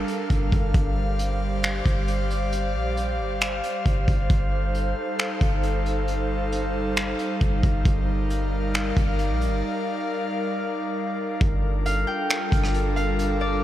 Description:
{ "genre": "hip hop, atmospheric cloud-rap", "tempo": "135 BPM", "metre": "4/4", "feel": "half-time", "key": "G minor", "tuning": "A4 = 439 Hz", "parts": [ { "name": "airy breathy pad", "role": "sustained chords", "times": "0.0-13.6 s", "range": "G3 to F5", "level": "-26 LUFS", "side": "equal", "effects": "chorus, sidechain pumping" }, { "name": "warm 808-style bass", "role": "bass", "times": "0.0-13.6 s", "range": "G1 to Bb1", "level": "-24 LUFS", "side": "equal", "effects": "none" }, { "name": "vintage brush drum kit", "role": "drums", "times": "0.1-13.3 s", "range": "finger snaps, hi-hat, kick drum, rim click", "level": "-26 LUFS", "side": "equal", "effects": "none" }, { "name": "Celtic harp", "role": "melody", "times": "11.9-13.6 s", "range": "D5 to G5", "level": "-27 LUFS", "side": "left 1 dB", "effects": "diffuse ambient delay" } ], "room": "moderate huge ambient reverb, RT60 4.2 s", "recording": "dreamy mix soaked in reverb", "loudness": "-22 LUFS", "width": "side -13 dB against mid", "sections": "0.0-11.4 A section; 11.4-13.6 B section", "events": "break 9.6-11.4", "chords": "0.0 Gm7; 0.7 Bb6/G; 4.3 F7/G; 7.9 Ebmaj7/G; 11.4 Gm7" }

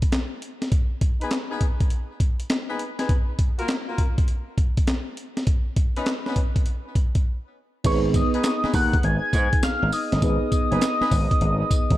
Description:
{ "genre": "R&B, new jack swing", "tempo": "101 BPM", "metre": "4/4", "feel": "swing 66% on 16ths", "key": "G# dorian", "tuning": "A4 = 440 Hz", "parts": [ { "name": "breakbeat sampler-style drum kit", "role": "drums", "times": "0.0-12.0 s", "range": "crash cymbal, handclaps, hi-hat, kick drum, snare drum, tambourine", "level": "-22 LUFS", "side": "equal", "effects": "none" }, { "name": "warm horn section", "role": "stabs", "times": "1.2-11.2 s", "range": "A#3 to B4", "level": "-32 LUFS", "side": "left 2 dB", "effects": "none" }, { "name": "mellow FM electric piano", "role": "accompaniment", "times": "7.8-12.0 s", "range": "B3 to B4", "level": "-27 LUFS", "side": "right 2 dB", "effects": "chorus, phaser" }, { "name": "gritty slap bass", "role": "bass", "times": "7.8-12.0 s", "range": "F#1 to G#2", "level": "-24 LUFS", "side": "equal", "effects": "overdrive" }, { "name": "warm velvety synth lead", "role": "melody", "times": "7.9-12.0 s", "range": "C#6 to G#6", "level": "-25 LUFS", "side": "equal", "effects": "chorus, tremolo, digital delay" } ], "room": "light reverb", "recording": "dark, warm production", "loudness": "-20 LUFS", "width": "side -15 dB against mid", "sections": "0.0-7.8 A section; 7.8-12.0 B section", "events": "break 7.3-7.8", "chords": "0.0 G#m; 3.1 F#maj7; 5.5 Badd9; 6.7 N.C.; 7.8 G#m" }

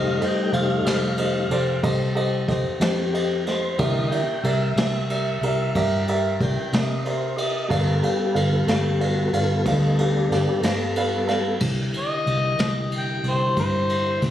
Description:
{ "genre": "slow blues", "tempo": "61 BPM (dotted quarters)", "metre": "12/8", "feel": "straight", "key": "unclear", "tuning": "A4 = 439 Hz", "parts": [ { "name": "dark upright piano", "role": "accompaniment", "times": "0.0-11.5 s", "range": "G4 to F5", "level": "-26 LUFS", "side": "right 2 dB", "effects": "none" }, { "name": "tonewheel organ", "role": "sustained chords", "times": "0.0-14.3 s", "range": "D3 to G5", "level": "-26 LUFS", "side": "left 2 dB", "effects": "slow rotary speaker, chorus vibrato" }, { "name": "vintage muted fingered electric bass", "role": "bass", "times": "0.0-14.3 s", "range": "F1 to C3", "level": "-24 LUFS", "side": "equal", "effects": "none" }, { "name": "vintage brush drum kit", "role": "drums", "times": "0.2-14.3 s", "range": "crash cymbal, kick drum, ride cymbal, snare drum", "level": "-28 LUFS", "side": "equal", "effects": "none" }, { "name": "overdriven harmonica", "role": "melody", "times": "12.0-14.2 s", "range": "C5 to G5", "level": "-24 LUFS", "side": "left 2 dB", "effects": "none" } ], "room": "moderate spring reverb, RT60 1.9 s, studio reverb", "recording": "recorded on a phone in the room", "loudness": "-20 LUFS", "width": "side -11 dB against mid", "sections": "0.0-11.6 A section; 11.6-14.3 B section", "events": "tonewheel organ solo 0.0-11.6", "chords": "0.0 F9; 3.8 C9; 7.7 G9; 11.6 C9" }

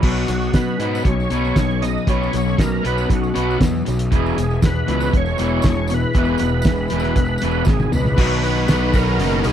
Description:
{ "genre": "classic rock", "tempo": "118 BPM", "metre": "4/4", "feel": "straight", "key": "unclear", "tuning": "A4 = 439 Hz", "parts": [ { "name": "overdriven tonewheel organ", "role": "melody", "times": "0.0-9.5 s", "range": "F#4 to D#5", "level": "-24 LUFS", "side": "right 2 dB", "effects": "slow rotary speaker, chorus vibrato" }, { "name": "string machine, full ensemble", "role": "sustained chords", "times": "0.8-9.5 s", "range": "F#3 to B4", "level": "-31 LUFS", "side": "equal", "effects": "none" }, { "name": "crunchy overdriven guitar", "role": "riff", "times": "0.0-9.5 s", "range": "E2 to D#4", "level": "-23 LUFS", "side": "left 11 dB", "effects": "none" }, { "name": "raw garage guitar", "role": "riff", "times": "0.0-9.5 s", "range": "E2 to F#4", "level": "-27 LUFS", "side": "right 12 dB", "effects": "overdrive" }, { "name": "fuzz picked electric bass", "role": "bass", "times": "0.0-9.5 s", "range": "E1 to B2", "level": "-21 LUFS", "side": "equal", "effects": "overdrive" }, { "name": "cloth-damped thuddy drum kit", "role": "drums", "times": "0.0-9.5 s", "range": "crash cymbal, hi-hat, kick drum, snare drum, toms", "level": "-19 LUFS", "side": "equal", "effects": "none" }, { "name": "tambourine", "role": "percussion", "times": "0.0-9.5 s", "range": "none", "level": "-42 LUFS", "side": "left 5 dB", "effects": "none" }, { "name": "distorted electric guitar", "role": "riff", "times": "8.2-9.5 s", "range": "B2 to B3", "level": "-28 LUFS", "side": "left 1 dB", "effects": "overdrive" } ], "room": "small room reverb", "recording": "dry, close 1970s-style studio recording", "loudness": "-16 LUFS", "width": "side -10 dB against mid", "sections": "0.0-8.2 A section; 8.2-9.5 B section", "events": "drum fill 7.7-8.2", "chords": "0.0 Bsus2; 4.1 E; 8.2 B" }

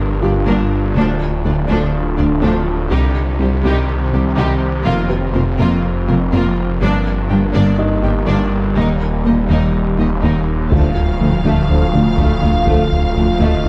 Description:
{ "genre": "cinematic, hybrid orchestral and electronic film score", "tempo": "123 BPM", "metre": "4/4", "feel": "straight", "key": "D phrygian", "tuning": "A4 = 440 Hz", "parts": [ { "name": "analog drone", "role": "sustained chords", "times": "0.0-13.7 s", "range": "D3 to F5", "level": "-25 LUFS", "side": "equal", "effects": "chorus" }, { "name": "snarling distorted saw bass", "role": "bass", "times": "0.0-13.7 s", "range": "D1 to C2", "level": "-22 LUFS", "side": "equal", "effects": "distortion" }, { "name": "felt-muted upright piano", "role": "texture", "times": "0.0-13.7 s", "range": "D4 to G5", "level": "-30 LUFS", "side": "equal", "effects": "digital delay" }, { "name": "rich symphonic violin section", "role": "second line", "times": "0.2-13.6 s", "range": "A3 to G5", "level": "-30 LUFS", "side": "equal", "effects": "none" }, { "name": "rich symphonic viola section", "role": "accompaniment", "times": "0.2-13.6 s", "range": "F3 to G4", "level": "-28 LUFS", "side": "equal", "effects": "none" }, { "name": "thumb-piano-like synth pluck", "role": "arpeggios", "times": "0.2-13.5 s", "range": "C3 to G4", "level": "-26 LUFS", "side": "equal", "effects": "none" }, { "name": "rich symphonic cello section", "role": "bass", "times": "0.2-13.5 s", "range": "C2 to G2", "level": "-23 LUFS", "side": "equal", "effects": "none" }, { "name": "rich symphonic double bass section", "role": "bass", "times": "0.2-13.5 s", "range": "F1 to Eb2", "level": "-24 LUFS", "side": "equal", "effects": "none" }, { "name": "clear symphonic violin section", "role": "melody", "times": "10.7-13.7 s", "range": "F5", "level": "-27 LUFS", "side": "equal", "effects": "none" }, { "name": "mellow French horn section", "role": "sustained chords", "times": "10.7-13.7 s", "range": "A3 to F4", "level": "-31 LUFS", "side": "equal", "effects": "none" }, { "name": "warm trombone section", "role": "sustained chords", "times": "10.7-13.7 s", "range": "D3 to F3", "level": "-28 LUFS", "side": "equal", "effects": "none" }, { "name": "round analog bass", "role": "riff", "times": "10.7-13.7 s", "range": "D2 to D3", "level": "-20 LUFS", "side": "equal", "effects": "none" }, { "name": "solo taiko drums", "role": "drums", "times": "10.7-13.1 s", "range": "none", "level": "-23 LUFS", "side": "equal", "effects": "none" } ], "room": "moderate scoring stage reverb, RT60 1.6 s", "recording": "dark, warm production", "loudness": "-16 LUFS", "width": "mono", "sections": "0.0-10.7 A section; 10.7-13.7 B section", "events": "build-up 0.0-10.7", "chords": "0.0 Gm; 1.0 Dm; 2.9 Cm; 4.9 Fsus4; 6.8 Gm; 8.8 Eb; 10.7 Dm" }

